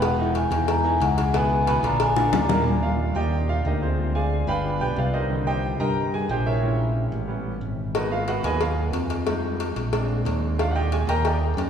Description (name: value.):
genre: Afro-Cuban jazz.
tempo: 182 BPM.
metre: 4/4.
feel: straight.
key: Eb major.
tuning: A4 = 440 Hz.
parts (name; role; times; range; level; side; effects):
vibraphone with medium mallets; melody; 0.0-2.6 s; F#5 to B5; -24 LUFS; left 2 dB; none.
clear baby grand piano; accompaniment; 0.0-11.7 s; A#2 to Cb6; -26 LUFS; right 2 dB; none.
modern bright fingered electric bass; bass; 0.0-11.7 s; E1 to G2; -24 LUFS; equal; none.
cowbell and bongos; percussion; 0.0-2.6, 7.9-11.7 s; none; -28 LUFS; left 4 dB; none.
room: wet church reverb, RT60 3.1 s.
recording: recorded in a church or concert hall.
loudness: -21 LUFS.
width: side -8 dB against mid.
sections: 0.0-2.7 A section; 2.7-11.7 A section.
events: vibraphone solo 0.0-2.7; drum fill 2.2-2.7; grand piano solo 2.7-11.7.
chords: 0.0 Emaj13; 1.3 C#5; 2.0 A#7; 2.7 Ebmaj7; 4.0 Dm7b5; 4.6 G7; 5.3 Cm7; 6.6 Bbm7b5; 7.3 A9; 8.0 Abm7; 9.3 Fm7; 9.9 Bb7; 10.6 Ebmaj7.